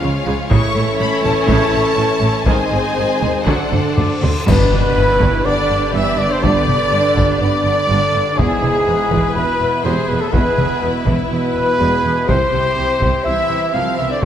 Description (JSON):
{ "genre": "cinematic, epic orchestral film score", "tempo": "123 BPM", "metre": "4/4", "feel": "straight", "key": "G major from 4.5 s", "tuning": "A4 = 440 Hz", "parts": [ { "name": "clear symphonic violin section", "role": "melody", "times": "0.0-14.2 s", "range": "G#4 to C#6", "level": "-26 LUFS", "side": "left 4 dB", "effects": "none" }, { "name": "clear symphonic violin section", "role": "second line", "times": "0.0-14.2 s", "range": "E4 to F5", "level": "-24 LUFS", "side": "left 3 dB", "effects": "none" }, { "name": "clear symphonic viola section", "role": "accompaniment", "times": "0.0-14.2 s", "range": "C#3 to B4", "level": "-26 LUFS", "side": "right 1 dB", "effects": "none" }, { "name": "clear trombone section", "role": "sustained chords", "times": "0.0-14.2 s", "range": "G#2 to A3", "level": "-25 LUFS", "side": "right 4 dB", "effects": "none" }, { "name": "mellow French horn section", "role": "sustained chords", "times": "0.0-13.4 s", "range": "B3 to C5", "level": "-24 LUFS", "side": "left 3 dB", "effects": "none" }, { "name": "rich symphonic string section", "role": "sustained chords", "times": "0.0-14.2 s", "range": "B3 to E5", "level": "-25 LUFS", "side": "left 1 dB", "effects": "none" }, { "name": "dark trumpet", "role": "stabs", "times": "0.0-14.2 s", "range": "G#4 to F5", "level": "-20 LUFS", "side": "equal", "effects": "none" }, { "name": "rich symphonic cello section", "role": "bass", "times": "0.0-14.2 s", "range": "E2 to D3", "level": "-23 LUFS", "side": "right 2 dB", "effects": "none" }, { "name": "rich symphonic double bass section", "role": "bass", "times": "0.0-14.1 s", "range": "E1 to D2", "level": "-23 LUFS", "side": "right 2 dB", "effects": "none" }, { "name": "taiko ensemble", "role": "drums", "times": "0.5-14.2 s", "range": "none", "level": "-20 LUFS", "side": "equal", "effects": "none" }, { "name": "cymbal swell, clash cymbals and concert bass drum", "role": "percussion", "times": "0.5-5.4 s", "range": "none", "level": "-25 LUFS", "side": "left 1 dB", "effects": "none" }, { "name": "reverse cymbal and impact", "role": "sound effects", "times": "4.0-6.4 s", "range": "none", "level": "-27 LUFS", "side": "left 1 dB", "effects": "none" }, { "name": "mellow hollow concert flute", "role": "second line", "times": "4.0-14.2 s", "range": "G#4 to D6", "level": "-24 LUFS", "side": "left 2 dB", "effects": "none" }, { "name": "timpani", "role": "percussion", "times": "4.5-5.2 s", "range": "G2", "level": "-24 LUFS", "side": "left 1 dB", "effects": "none" } ], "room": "wet scoring stage reverb, RT60 1.8 s", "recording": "none", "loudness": "-13 LUFS", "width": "side -10 dB against mid", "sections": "0.0-4.5 A section; 4.5-14.2 B section", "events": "drum fill 3.7-4.5; reverse cymbal 4.0-4.5; band accent 4.5-5.0; impact 4.5-6.4", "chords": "0.0 Db; 0.5 A; 2.5 Ab; 3.5 D7; 4.5 G; 8.4 E; 12.3 C", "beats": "0.02 | 0.51 1.00 1.49 1.98 | 2.47 2.96 3.46 3.96 | 4.46 4.96 5.45 5.94 | 6.43 6.92 7.41 7.90 | 8.38 8.87 9.35 9.84 | 10.32 10.81 11.30 11.79 | 12.27 12.76 13.25 13.73 | 14.22" }